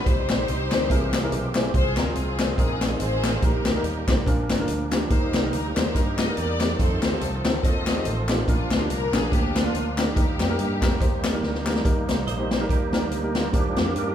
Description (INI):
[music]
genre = uptempo gospel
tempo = 142 BPM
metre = 4/4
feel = swing 56% on 8ths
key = Eb major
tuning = A4 = 442 Hz
[part]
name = rich studio string section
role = melody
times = 0.0-11.4 s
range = Bb3 to Eb5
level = -29 LUFS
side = left 1 dB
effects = none
[part]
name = bright tonewheel organ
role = sustained chords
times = 0.0-14.1 s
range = Eb3 to Bb4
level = -32 LUFS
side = right 4 dB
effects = overdrive, chorus vibrato, fast rotary speaker
[part]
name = warm upright piano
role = accompaniment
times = 0.1-14.1 s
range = Bb2 to C5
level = -30 LUFS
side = left 1 dB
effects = none
[part]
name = fingered electric bass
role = bass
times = 0.1-14.1 s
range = G1 to G2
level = -29 LUFS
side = equal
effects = none
[part]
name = swinging big-band drum kit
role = drums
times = 0.1-14.1 s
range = hi-hat, kick drum, snare drum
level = -24 LUFS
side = equal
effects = none
[part]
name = group handclap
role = percussion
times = 0.3-11.8 s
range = none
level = -37 LUFS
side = left 3 dB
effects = none
[part]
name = clean electric guitar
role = second line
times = 12.3-13.3 s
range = G4 to Eb5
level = -34 LUFS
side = right 6 dB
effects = none
[sound]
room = moderate recital hall reverb, RT60 1.5 s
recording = recorded in a church or concert hall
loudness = -21 LUFS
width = side -10 dB against mid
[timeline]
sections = 0.0-11.8 A section; 11.8-13.5 B section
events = drum fill 11.4-11.8; tonewheel organ solo 11.8-13.5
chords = 0.1 Cm; 0.9 C7b13; 1.7 Fm/C; 2.6 Bb9sus4; 3.4 Eb/Bb; 4.3 Bb; 5.1 Eb; 6.8 F7; 8.5 Bb; 10.2 Eb; 13.5 Ebmaj7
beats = | 0.06 0.48 0.90 1.32 | 1.74 2.16 2.58 3.00 | 3.42 3.85 4.27 4.69 | 5.11 5.53 5.95 6.37 | 6.79 7.21 7.63 8.06 | 8.48 8.90 9.32 9.74 | 10.16 10.58 11.01 11.43 | 11.85 12.27 12.69 13.11 | 13.53 13.95